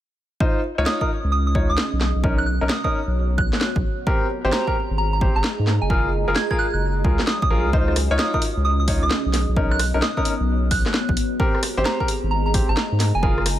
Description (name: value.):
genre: UK garage, two-step garage.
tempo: 131 BPM.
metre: 4/4.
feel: swing 65% on 16ths.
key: Db major.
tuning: A4 = 438 Hz.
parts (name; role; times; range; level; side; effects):
clear grand piano; stabs; 0.4-13.4 s; C4 to Db5; -25 LUFS; left 1 dB; tape echo.
electronic kick drum; drums; 0.4-13.3 s; none; -22 LUFS; equal; none.
deep dark ambient pad; texture; 1.2-13.6 s; Cb4 to Bb5; -29 LUFS; equal; chorus, built-in reverb, sidechain pumping.
saturated sub bass; bass; 0.8-13.6 s; Gb1 to Ab2; -22 LUFS; equal; none.
soft synth bell; melody; 0.9-13.3 s; Ab5 to Ab6; -27 LUFS; right 2 dB; chorus, tape echo.
garage drum kit; drums; 0.9-13.6 s; hi-hat, rim click, snare drum; -25 LUFS; equal; none.
room: light reverb, digital ambience.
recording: none.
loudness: -18 LUFS.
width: side -12 dB against mid.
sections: 0.4-13.6 A section.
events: none.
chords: 0.4 Dbadd9; 2.0 Cbmaj9; 3.8 Abmaj9; 5.9 Gbmaj9; 7.7 Dbadd9; 9.3 Cbmaj9; 11.2 Abmaj9.